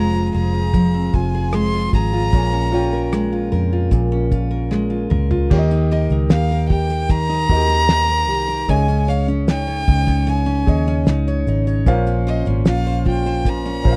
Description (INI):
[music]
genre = acoustic pop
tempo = 76 BPM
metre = 4/4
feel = straight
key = unclear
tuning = A4 = 445 Hz
[part]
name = warm violin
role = melody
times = 0.0-14.0 s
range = Eb5 to C6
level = -25 LUFS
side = equal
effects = none
[part]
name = picked steel-string acoustic guitar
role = accompaniment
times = 0.0-14.0 s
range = Bb2 to Db5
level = -24 LUFS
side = equal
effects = none
[part]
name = warm grand piano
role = accompaniment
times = 0.0-14.0 s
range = Db4 to Bb5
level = -31 LUFS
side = equal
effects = none
[part]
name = vintage muted fingered electric bass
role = bass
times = 0.0-14.0 s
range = F1 to F2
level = -22 LUFS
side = equal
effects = none
[part]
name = cloth-damped thuddy drum kit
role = drums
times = 0.4-14.0 s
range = crash cymbal, kick drum, rim click, shaker, snare drum, toms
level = -19 LUFS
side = equal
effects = none
[sound]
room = little or no reverb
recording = dry, close 1970s-style studio recording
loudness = -18 LUFS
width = mono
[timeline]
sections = 0.0-5.5 A section; 5.5-14.0 B section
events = drum fill 4.7-5.5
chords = 0.0 Fm; 2.3 Bbm7; 5.5 Eb; 8.7 Dbsus2; 11.9 Bbmadd9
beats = 0.75 1.54 | 2.34 3.13 3.92 4.72 | 5.51 6.30 7.10 7.89 | 8.69 9.48 10.28 11.07 | 11.86 12.66 13.45